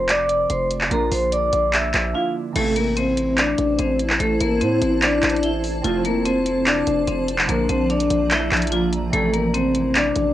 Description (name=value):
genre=hip hop, trap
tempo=146 BPM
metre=4/4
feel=half-time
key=A phrygian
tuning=A4 = 440 Hz
part: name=vibraphone with hard mallets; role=melody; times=0.0-10.3 s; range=F3 to E6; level=-20 LUFS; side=left 1 dB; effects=low-pass filter, cassette tape, tape echo
part: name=glassy digital keys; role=accompaniment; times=0.0-10.3 s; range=C3 to F4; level=-30 LUFS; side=right 6 dB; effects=chorus, low-pass filter, cassette tape
part: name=hard-hitting 808-style bass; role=bass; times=0.0-10.3 s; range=F1 to A2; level=-26 LUFS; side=equal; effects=none
part: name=trap drum kit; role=drums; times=0.1-10.3 s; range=crash cymbal, handclaps, hi-hat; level=-22 LUFS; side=equal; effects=vintage 12-bit sampler grit, cassette tape
part: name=granular cloud pad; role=sustained chords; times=3.7-10.3 s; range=F3 to Bb5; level=-26 LUFS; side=equal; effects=built-in reverb, cassette tape
room=light reverb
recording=home recording on cassette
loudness=-17 LUFS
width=side -13 dB against mid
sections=0.0-2.6 A section; 2.6-10.3 B section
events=break 2.1-2.6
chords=0.0 F; 0.9 Bb; 2.6 Am; 5.8 F; 7.5 Bb; 9.1 Am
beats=0.09 0.50 | 0.91 1.32 1.74 2.15 | 2.56 2.97 3.38 3.79 | 4.20 4.61 5.02 5.43 | 5.84 6.25 6.67 7.08 | 7.49 7.90 8.31 8.72 | 9.13 9.54 9.95